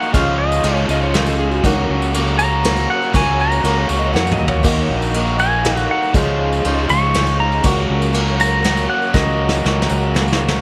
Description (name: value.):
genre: folk rock and heartland rock.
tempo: 120 BPM.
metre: 3/4.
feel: straight.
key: unclear.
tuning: A4 = 441 Hz.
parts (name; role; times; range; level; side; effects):
pedal steel guitar; melody; 0.0-10.1 s; Eb5 to Db6; -21 LUFS; equal; none.
dark concert grand piano; accompaniment; 0.0-10.6 s; Gb4 to Gb5; -33 LUFS; equal; none.
picked acoustic archtop guitar; accompaniment; 0.0-10.6 s; Db3 to Bb4; -27 LUFS; equal; none.
dark chamber string section; sustained chords; 0.0-10.6 s; F4 to Gb5; -34 LUFS; equal; none.
overdriven electric guitar; riff; 0.0-10.6 s; Db3 to Gb4; -24 LUFS; equal; none.
tambourine; percussion; 0.0-10.4 s; none; -38 LUFS; equal; none.
fingered electric bass; bass; 0.1-10.6 s; Bb1 to F2; -22 LUFS; equal; none.
soft brush drum kit; drums; 0.1-10.6 s; crash cymbal, kick drum, ride cymbal, snare drum, toms; -24 LUFS; equal; none.
electric slide guitar; second line; 0.9-5.3 s; Db4 to Gb5; -27 LUFS; equal; none.
room: light reverb, studio reverb.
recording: none.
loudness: -17 LUFS.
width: mono.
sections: 0.0-10.6 A section.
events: drum fill 4.1-4.6, 9.1-10.6.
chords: 0.1 Dbadd9; 1.6 Gb/Db; 4.6 Ebmadd9; 6.1 Dbadd9; 7.6 Gb/Db.